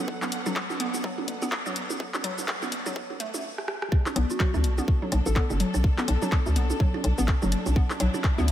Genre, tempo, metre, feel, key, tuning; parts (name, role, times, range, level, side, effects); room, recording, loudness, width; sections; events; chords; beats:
minimal techno; 125 BPM; 4/4; swing 59% on 16ths; B minor; A4 = 440 Hz
rich studio string section; texture; 0.0-8.5 s; D4 to F#5; -37 LUFS; left 1 dB; sidechain pumping
electronic kick drum; drums; 0.1-8.4 s; -24 LUFS; equal; high-pass filter on kick, high-pass filter on room
hollow square pluck; riff; 0.2-8.4 s; F#3 to B3; -32 LUFS; left 1 dB; chorus, sidechain pumping, analog delay
punchy analog drum machine; drums; 0.2-8.5 s; cabasa, handclaps, hi-hat, rim click; -32 LUFS; left 1 dB
percussion blips and woodblock; percussion; 0.2-8.5 s; -34 LUFS; right 5 dB; diffuse ambient delay
hollow knocking FM bass; bass; 4.2-8.5 s; F#1 to D2; -24 LUFS; equal; tube saturation, sidechain pumping
soft struck synth lead; melody; 4.3-5.5 s; F#4 to A4; -38 LUFS; left 2 dB; chorus, diffuse ambient delay
light reverb; high-pass filter; -24 LUFS; side -12 dB against mid
0.0-3.9 A section; 3.9-8.5 B section
build-up 0.0-3.9; drum fill 3.6-3.9; drop 3.9-8.5
0.0 Bm7
| 0.08 0.56 1.04 1.52 | 2.00 2.48 2.96 3.44 | 3.92 4.40 4.88 5.36 | 5.84 6.32 6.80 7.28 | 7.76 8.24